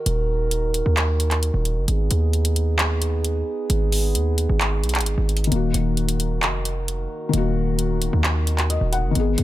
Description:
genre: hip hop, trap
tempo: 132 BPM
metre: 4/4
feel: half-time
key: Eb minor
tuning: A4 = 440 Hz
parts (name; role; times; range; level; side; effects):
- dark brass ensemble; sustained chords; 0.0-9.4 s; Eb3 to Bb4; -28 LUFS; right 3 dB; none
- hard-hitting 808-style bass; bass; 0.1-9.4 s; Eb1 to Eb2; -21 LUFS; equal; none
- trap drum kit; drums; 0.1-9.4 s; handclaps, hi-hat; -24 LUFS; equal; none
- felt-muted upright piano; accompaniment; 5.5-9.4 s; Eb3 to Gb5; -24 LUFS; left 6 dB; none
room: small room ambience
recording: none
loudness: -19 LUFS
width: side -15 dB against mid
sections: 0.0-9.4 A section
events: none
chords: 0.0 Ebm; 1.9 Abm; 5.5 Ebm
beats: | 0.06 0.52 0.97 1.43 | 1.88 2.33 2.79 3.24 | 3.70 4.15 4.61 5.06 | 5.52 5.97 6.43 6.88 | 7.33 7.79 8.24 8.70 | 9.15

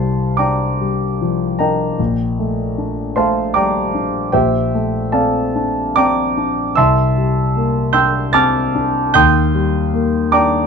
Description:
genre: classical, impressionist solo piano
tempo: 76 BPM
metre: 3/4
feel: rubato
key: unclear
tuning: A4 = 436 Hz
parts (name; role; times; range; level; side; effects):
- warm concert grand piano; solo; 0.0-10.7 s; Bb1 to A6; -14 LUFS; equal; none
room: light reverb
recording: dark, warm production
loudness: -14 LUFS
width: side -6 dB against mid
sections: 0.0-10.7 A section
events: none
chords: 0.0 Csus2; 2.0 Bbmaj7; 4.3 Dm9/Bb; 6.8 C13; 9.2 Ebmaj7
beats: 0.37 1.19 | 1.99 2.77 3.56 | 4.34 5.14 5.98 | 6.78 7.57 8.35 | 9.15 9.93

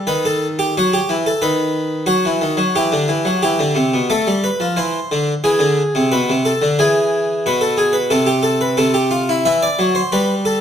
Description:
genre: classical, baroque-style two-part invention for harpsichord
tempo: 90 BPM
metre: 4/4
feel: straight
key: A minor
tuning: A4 = 440 Hz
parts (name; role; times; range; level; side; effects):
- harpsichord; solo; 0.0-10.6 s; B2 to E5; -14 LUFS; equal; none
room: moderate large studio reverb, RT60 1.3 s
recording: none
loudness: -14 LUFS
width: side -8 dB against mid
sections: 0.0-4.1 A section; 4.1-10.6 B section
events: none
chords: 0.1 B/D#; 2.7 Em; 4.1 Am; 5.5 E; 8.1 Am/C; 9.4 Em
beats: 0.07 0.74 | 1.41 2.07 2.75 3.42 | 4.10 4.78 5.45 6.12 | 6.79 7.45 8.12 8.78 | 9.45 10.11

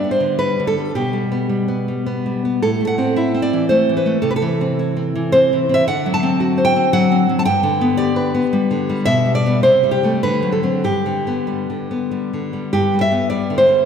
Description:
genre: romantic piece for solo classical guitar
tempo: 93-114 BPM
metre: 3/4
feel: rubato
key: G major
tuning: A4 = 442 Hz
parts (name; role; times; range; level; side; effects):
- nylon-string guitar; solo; 0.0-13.9 s; G2 to A5; -15 LUFS; equal; none
room: wet scoring stage reverb, RT60 2.0 s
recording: heard from further back in the room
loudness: -15 LUFS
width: side -7 dB against mid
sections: 0.0-12.7 A section; 12.7-13.9 A section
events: none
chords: 0.0 G; 1.0 G/B; 2.6 Am; 4.2 Am/C; 5.9 D7; 7.5 G; 9.1 G/B; 9.6 Am7/C; 10.2 D7; 10.8 G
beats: 0.40 | 0.97 1.52 2.09 | 2.64 3.17 3.71 | 4.25 4.79 5.33 | 5.87 6.39 6.93 | 7.46 8.00 8.54 | 9.08 9.64 10.22 | 10.83 11.47 12.11 | 12.73 13.31

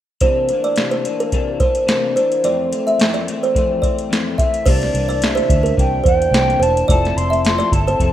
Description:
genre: indie pop, bedroom pop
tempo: 108 BPM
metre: 4/4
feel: swing 55% on 16ths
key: unclear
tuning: A4 = 439 Hz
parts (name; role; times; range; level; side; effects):
- kalimba; second line; 0.2-8.0 s; Bb4 to E5; -18 LUFS; right 2 dB; lush chorus, analog delay
- electric guitar at the edge of break-up; accompaniment; 0.2-8.1 s; F2 to A4; -24 LUFS; left 5 dB; analog chorus, warbly pitch drift
- soft vintage rhythm box; drums; 0.2-8.1 s; crash cymbal, hi-hat, kick drum, snare drum; -19 LUFS; equal; overdrive
- mellow silver concert flute; melody; 4.4-8.1 s; D5 to C6; -22 LUFS; left 2 dB; wide subtle chorus
- vintage muted fingered electric bass; bass; 4.7-8.1 s; E1 to E2; -20 LUFS; equal; none
room: moderate lush hall reverb, RT60 2.5 s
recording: rough home demo mix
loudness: -14 LUFS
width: side -12 dB against mid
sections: 0.2-4.7 A section; 4.7-8.1 B section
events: none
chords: 0.2 C9; 2.4 Fmaj7; 4.7 C9; 6.9 Fmaj7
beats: | 0.21 0.77 1.33 1.88 | 2.44 2.99 3.55 4.11 | 4.66 5.22 5.77 6.33 | 6.88 7.44 8.00

